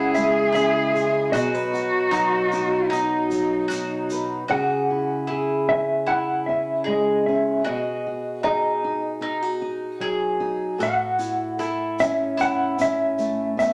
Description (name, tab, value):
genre	acoustic folk duo or small band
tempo	76 BPM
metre	4/4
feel	straight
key	C# minor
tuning	A4 = 440 Hz
part	mellow electric guitar	melody	0.0-13.7 s	D#5 to F#5	-26 LUFS	equal	tremolo
part	clear cello	second line	0.0-4.1 s	D#4 to G#4	-27 LUFS	equal	none
part	fingerpicked steel-string acoustic guitar	accompaniment	0.0-13.7 s	A2 to B4	-28 LUFS	equal	none
part	pedal harmonium	sustained chords	0.0-4.4 s	B2 to E4	-32 LUFS	equal	none
part	bowl-back mandolin	arpeggios	0.0-13.2 s	D#4 to G#4	-30 LUFS	equal	none
part	egg shaker	percussion	0.1-4.3, 10.8-13.7 s	none	-45 LUFS	equal	none
room	wet studio reverb, RT60 0.7 s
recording	none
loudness	-23 LUFS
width	mono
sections	0.0-4.5 A section; 4.5-13.7 B section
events	none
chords	0.0 C#m; 1.3 B; 4.5 C#m; 7.6 B6; 10.8 A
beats	0.54 | 1.33 2.11 2.90 3.69 | 4.48 5.27 6.06 6.85 | 7.64 8.43 9.22 10.02 | 10.81 11.60 12.39 13.18